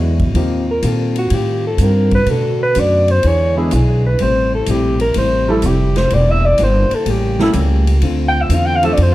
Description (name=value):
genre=jazz, big band swing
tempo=125 BPM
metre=4/4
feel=swing 69% on 8ths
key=unclear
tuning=A4 = 440 Hz
part: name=hollow-body jazz guitar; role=accompaniment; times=0.0-9.1 s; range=A2 to A4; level=-23 LUFS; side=left 4 dB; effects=none
part: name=dark trombone section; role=sustained chords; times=0.0-9.1 s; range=C3 to G4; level=-26 LUFS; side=equal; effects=none
part: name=upright bass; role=bass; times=0.0-9.1 s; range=E1 to B2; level=-15 LUFS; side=equal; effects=none
part: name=swinging big-band drum kit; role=drums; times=0.2-9.1 s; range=hi-hat, kick drum, ride cymbal, snare drum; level=-26 LUFS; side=equal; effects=none
part: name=clear concert grand piano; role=accompaniment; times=0.3-0.7, 3.6-9.0 s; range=E3 to A4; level=-20 LUFS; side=right 1 dB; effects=none
part: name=breathy alto saxophone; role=melody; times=0.7-9.1 s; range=E4 to G5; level=-17 LUFS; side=equal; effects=plate reverb
room=moderate large studio reverb, RT60 0.9 s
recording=dark, warm production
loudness=-12 LUFS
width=side -16 dB against mid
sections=0.0-9.1 A section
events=alto saxophone solo 0.0-9.1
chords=0.3 Eb69; 2.3 Bm7; 3.2 E7; 4.2 Am7; 6.1 Em7b5; 7.1 A7b9; 8.0 Dm7